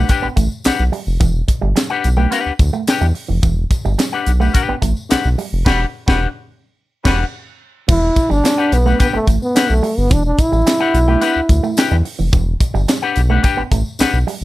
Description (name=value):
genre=funk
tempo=108 BPM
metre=4/4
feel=straight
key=E minor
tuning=A4 = 440 Hz
part: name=electric guitar with an envelope filter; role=accompaniment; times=0.0-14.2 s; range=D4 to G5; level=-19 LUFS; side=left 7 dB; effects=none
part: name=electric guitar with an envelope filter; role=riff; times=0.0-14.4 s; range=E3 to B3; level=-24 LUFS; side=right 7 dB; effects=none
part: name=round analog bass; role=bass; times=0.0-14.4 s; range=E1 to E2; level=-16 LUFS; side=equal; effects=none
part: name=crisp fusion drum kit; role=drums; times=0.1-14.4 s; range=crash cymbal, handclaps, hi-hat, kick drum, snare drum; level=-17 LUFS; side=equal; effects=none
part: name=tambourine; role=percussion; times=0.1-14.4 s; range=none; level=-33 LUFS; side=left 3 dB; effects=none
part: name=warm horn section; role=second line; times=5.7-7.2 s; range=G3 to B4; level=-25 LUFS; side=right 2 dB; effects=none
part: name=breathy trombone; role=melody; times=7.9-12.1 s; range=A3 to E4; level=-17 LUFS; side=equal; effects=none
room=light reverb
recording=none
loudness=-13 LUFS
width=side -17 dB against mid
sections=0.0-7.9 A section; 7.9-14.4 B section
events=band accent 5.7-7.9; break 7.3-7.9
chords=0.0 Em9